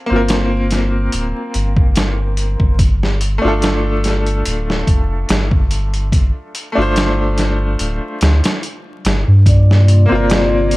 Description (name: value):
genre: trip hop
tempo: 72 BPM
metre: 4/4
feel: swing 54% on 16ths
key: G minor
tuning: A4 = 441 Hz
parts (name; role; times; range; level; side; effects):
- bright upright piano; accompaniment; 0.0-10.8 s; A3 to C5; -19 LUFS; left 1 dB; tremolo, tape echo
- soft dub sub bass; bass; 0.1-10.8 s; D1 to G2; -15 LUFS; equal; tube saturation
- trip hop sampler-style drum kit; drums; 0.3-10.8 s; hi-hat, kick drum, snare drum; -17 LUFS; equal; none
- pure breathy sine lead; melody; 9.5-10.8 s; D5; -20 LUFS; equal; chorus
- warbly tape-like pad; sustained chords; 9.6-10.8 s; C3 to F4; -21 LUFS; left 2 dB; chorus, built-in reverb
room: little or no reverb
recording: vinyl crackle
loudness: -12 LUFS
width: side -19 dB against mid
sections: 0.0-10.8 A section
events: none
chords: 0.0 Gm11; 2.8 Dm; 9.5 Gm7